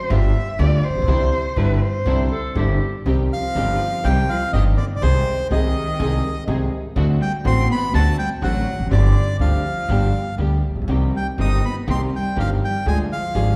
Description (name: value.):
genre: tango.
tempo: 122 BPM.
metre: 4/4.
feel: rubato.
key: C major, C harmonic minor from 3.1 s.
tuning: A4 = 440 Hz.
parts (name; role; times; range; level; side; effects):
warm cello; second line; 0.0-13.6 s; C3 to E5; -29 LUFS; equal; none.
warm concert grand piano; accompaniment; 0.1-13.6 s; G1 to Ab4; -27 LUFS; equal; none.
dark chamber string section; stabs; 0.1-13.6 s; B3 to Ab4; -34 LUFS; equal; none.
upright bass; bass; 0.1-13.6 s; E1 to D2; -22 LUFS; equal; none.
warm clarinet; second line; 2.3-3.1 s; G4 to A4; -32 LUFS; equal; none.
bandoneon; melody; 3.3-13.6 s; C5 to Eb6; -27 LUFS; equal; none.
room: wet recital hall reverb, RT60 1.5 s.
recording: recorded in a church or concert hall.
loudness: -20 LUFS.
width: mono.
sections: 0.0-3.1 A section; 3.1-13.6 B section.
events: cello solo 0.0-3.1.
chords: 0.1 G7; 1.1 Cadd9; 3.1 Cm; 5.0 Ab/C; 7.0 D7; 8.9 Gsus4; 9.9 G; 10.9 Cm; 12.9 Ddim.